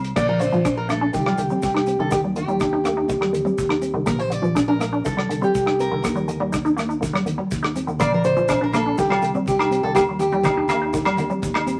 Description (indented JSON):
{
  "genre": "highlife guitar band",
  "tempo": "122 BPM",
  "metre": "4/4",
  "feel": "straight",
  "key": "unclear",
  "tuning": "A4 = 441 Hz",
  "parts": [
    { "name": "nylon-string guitar", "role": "accompaniment", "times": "0.0-11.8 s", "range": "Bb3 to F4", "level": "-32 LUFS", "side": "equal", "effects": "none" },
    { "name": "fingered electric bass", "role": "bass", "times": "0.0-11.8 s", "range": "Bb1 to Eb2", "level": "-31 LUFS", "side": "equal", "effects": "none" },
    { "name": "damped 70s drum kit", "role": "drums", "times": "0.0-11.8 s", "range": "crash cymbal, hi-hat, kick drum, rim click", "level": "-30 LUFS", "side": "equal", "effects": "none" },
    { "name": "picked acoustic archtop guitar", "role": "melody", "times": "0.2-11.6 s", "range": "F4 to D5", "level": "-25 LUFS", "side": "equal", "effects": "none" },
    { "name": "resonant blip pluck", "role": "arpeggios", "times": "0.2-11.6 s", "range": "D3 to Eb4", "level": "-26 LUFS", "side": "equal", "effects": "chorus, phaser" },
    { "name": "maracas", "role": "percussion", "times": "0.2-11.8 s", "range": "none", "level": "-44 LUFS", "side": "equal", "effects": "none" },
    { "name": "agogo bells", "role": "percussion", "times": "8.0-11.7 s", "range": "none", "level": "-28 LUFS", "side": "equal", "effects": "none" },
    { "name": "congas", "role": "percussion", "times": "8.0-11.5 s", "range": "none", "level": "-33 LUFS", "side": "equal", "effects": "none" }
  ],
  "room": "moderate studio reverb, RT60 0.8 s",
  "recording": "vinyl crackle",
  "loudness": "-21 LUFS",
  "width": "mono",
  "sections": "0.2-11.8 A section",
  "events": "none",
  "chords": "0.2 Bb; 1.1 Cm; 2.1 Eb; 4.1 Bb; 5.1 Cm; 6.0 Eb; 8.0 Bb; 9.0 Cm; 10.0 Eb"
}